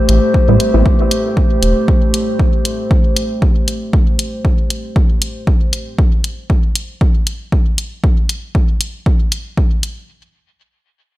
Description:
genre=dub techno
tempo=117 BPM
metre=4/4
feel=swing 55% on 16ths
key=A minor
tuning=A4 = 439 Hz
part: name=dark analog pad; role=sustained chords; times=0.0-5.9 s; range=A3 to C5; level=-18 LUFS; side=equal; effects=wide subtle chorus, sidechain pumping
part: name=round analog bass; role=bass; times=0.1-1.7 s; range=E1 to A2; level=-12 LUFS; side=equal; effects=sidechain pumping
part: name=electronic hi-hat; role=drums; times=0.1-9.9 s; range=none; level=-19 LUFS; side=left 1 dB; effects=studio reverb
part: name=electronic kick drum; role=drums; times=0.3-9.7 s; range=none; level=-13 LUFS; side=equal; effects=studio reverb
part: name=filtered dub chord stab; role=stabs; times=0.5-0.9 s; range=G3 to E4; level=-18 LUFS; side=right 2 dB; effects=phaser, sidechain pumping, dub echo
room=digital ambience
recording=none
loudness=-13 LUFS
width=side -16 dB against mid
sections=0.0-10.1 A section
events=none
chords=0.0 Am7

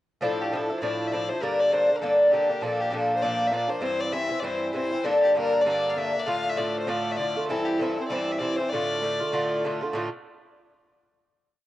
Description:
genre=celtic folk, Celtic reel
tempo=197 BPM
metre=4/4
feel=swing 57% on 8ths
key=D minor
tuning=A4 = 440 Hz
part: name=rich fiddle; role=melody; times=0.2-9.6 s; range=G4 to F5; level=-30 LUFS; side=left 4 dB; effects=cassette tape, analog delay
part: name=Irish bouzouki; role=accompaniment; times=0.2-10.1 s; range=G2 to F4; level=-24 LUFS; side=equal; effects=cassette tape
room=moderate spring reverb, RT60 1.9 s, small room ambience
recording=home recording on cassette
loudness=-23 LUFS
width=side -14 dB against mid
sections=0.2-9.9 A section; 9.9-11.2 final chord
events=none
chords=0.2 Dmadd9; 1.4 Gm; 2.6 Bb; 3.8 C; 5.0 Gm; 6.3 Dm; 7.5 C; 8.7 Dm

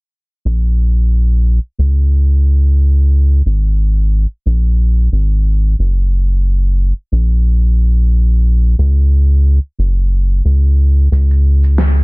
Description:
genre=organic downtempo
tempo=90 BPM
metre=4/4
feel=swing 53% on 16ths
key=Bb minor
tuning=A4 = 440 Hz
part: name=round analog bass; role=bass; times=0.5-12.0 s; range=Gb1 to Db2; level=-10 LUFS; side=equal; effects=none
part: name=electronic shaker and snare drum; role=drums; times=11.1-12.0 s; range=none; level=-18 LUFS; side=equal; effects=none
room=little or no reverb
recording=dense, heavily limited modern master, low-pass filter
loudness=-10 LUFS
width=side -31 dB against mid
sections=0.5-12.0 A section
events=filter sweep on analog synth bass 0.5-12.0; filter sweep 0.5-12.0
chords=none

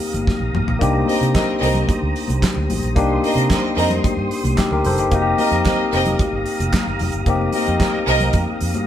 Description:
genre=disco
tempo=112 BPM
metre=4/4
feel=straight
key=unclear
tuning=A4 = 440 Hz
part: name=barky tine electric piano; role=accompaniment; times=0.0-8.9 s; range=Bb3 to C5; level=-21 LUFS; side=left 4 dB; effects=none
part: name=tonewheel organ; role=sustained chords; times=0.0-8.9 s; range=G4 to Eb6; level=-27 LUFS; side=right 1 dB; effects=chorus vibrato, slow rotary speaker
part: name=damped 70s drum kit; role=drums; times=0.0-8.9 s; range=handclaps, hi-hat, kick drum, snare drum, toms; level=-22 LUFS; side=right 1 dB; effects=none
part: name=vintage muted fingered electric bass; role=bass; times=0.1-8.8 s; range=F1 to C3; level=-22 LUFS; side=right 1 dB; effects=none
part: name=congas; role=percussion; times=0.1-8.9 s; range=none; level=-29 LUFS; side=left 2 dB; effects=none
part: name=warm studio violin section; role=second line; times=1.1-8.3 s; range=C4 to Eb5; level=-21 LUFS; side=right 1 dB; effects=none
room=moderate stone room reverb, RT60 1.0 s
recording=band playing live in one room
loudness=-16 LUFS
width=side -10 dB against mid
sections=0.0-8.9 A section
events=drum fill 0.3-0.8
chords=0.0 F9sus4; 0.8 Cm7; 5.1 F9sus4

